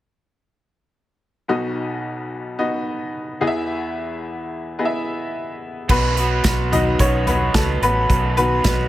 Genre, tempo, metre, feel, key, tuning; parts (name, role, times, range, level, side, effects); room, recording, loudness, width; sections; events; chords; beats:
piano-driven pop; 109 BPM; 4/4; straight; B major; A4 = 439 Hz
bright upright piano; accompaniment; 1.5-8.9 s; B1 to E5; -21 LUFS; left 1 dB
raw garage guitar; riff; 5.9-8.9 s; B2 to B4; -23 LUFS; right 2 dB; overdrive
vintage muted fingered electric bass; bass; 5.9-8.9 s; A1 to C#2; -22 LUFS; equal
natural country drum kit; drums; 5.9-8.8 s; crash cymbal, hi-hat, kick drum, snare drum, toms; -20 LUFS; equal
light reverb, small room ambience; -18 LUFS; side -14 dB against mid
1.5-5.9 A section; 5.9-8.9 B section
upright piano solo 5.9-8.9
1.5 B; 3.4 E; 5.9 B
| 1.48 2.04 2.59 3.14 | 3.69 4.24 4.79 5.34 | 5.89 6.44 6.99 7.54 | 8.09 8.64